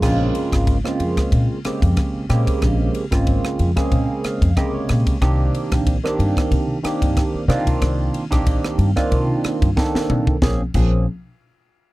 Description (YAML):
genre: electric jazz fusion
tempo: 92 BPM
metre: 4/4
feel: swing 54% on 16ths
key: Bb dorian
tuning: A4 = 440 Hz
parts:
  - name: barky tine electric piano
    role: accompaniment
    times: 0.0-11.1 s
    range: C3 to F5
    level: -22 LUFS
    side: right 2 dB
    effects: phaser
  - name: upright bass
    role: bass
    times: 0.0-11.0 s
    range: Ab1 to C3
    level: -20 LUFS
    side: equal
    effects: none
  - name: crisp fusion drum kit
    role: drums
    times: 0.0-10.9 s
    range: crash cymbal, kick drum, ride cymbal, rim click, snare drum, toms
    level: -21 LUFS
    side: equal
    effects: none
room: little or no reverb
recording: dry, close 1970s-style studio recording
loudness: -17 LUFS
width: side -18 dB against mid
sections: 0.0-10.4 A section; 10.4-11.9 B section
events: tine electric piano fill 3.9-5.2; drum fill 9.8-10.4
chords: 0.0 Bbm9; 5.2 Cm9; 10.4 Bbm9